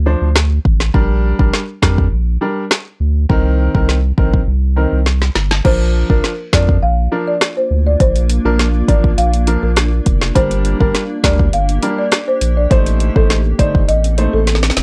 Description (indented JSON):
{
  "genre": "dancehall",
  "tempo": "102 BPM",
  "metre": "4/4",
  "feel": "straight",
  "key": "unclear",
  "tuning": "A4 = 440 Hz",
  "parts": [
    { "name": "saturated sub bass", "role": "bass", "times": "0.0-14.8 s", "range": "F1 to F2", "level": "-17 LUFS", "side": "equal", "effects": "none" },
    { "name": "clear concert grand piano", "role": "accompaniment", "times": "0.1-14.4 s", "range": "Eb3 to C5", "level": "-23 LUFS", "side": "equal", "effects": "none" },
    { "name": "afro-pop drum kit", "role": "drums", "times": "0.4-14.8 s", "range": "crash cymbal, hi-hat, kick drum, rim click, snare drum", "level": "-17 LUFS", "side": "equal", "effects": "none" },
    { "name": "folk marimba with medium mallets", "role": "melody", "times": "5.6-14.4 s", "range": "A4 to F5", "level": "-22 LUFS", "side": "equal", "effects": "none" },
    { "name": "granular cloud pad", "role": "sustained chords", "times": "6.9-14.8 s", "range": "Bb3 to A4", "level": "-27 LUFS", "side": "equal", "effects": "built-in reverb, sidechain pumping" }
  ],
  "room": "little or no reverb",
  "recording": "dry, gritty hardware recording, cassette tape",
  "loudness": "-14 LUFS",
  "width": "mono",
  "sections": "0.0-5.6 A section; 5.6-14.8 B section",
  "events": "drum fill 5.1-5.6, 14.5-14.8",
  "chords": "0.0 Dm7; 0.9 Bb6; 3.3 Cm7; 5.6 Bb; 10.4 Gm; 12.7 Adim",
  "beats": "0.35 | 0.94 1.53 2.12 2.71 | 3.30 3.88 4.47 5.06 | 5.65 6.24 6.83 7.41 | 8.00 8.59 9.18 9.77 | 10.36 10.94 11.53 12.12 | 12.71 13.30 13.88 14.47"
}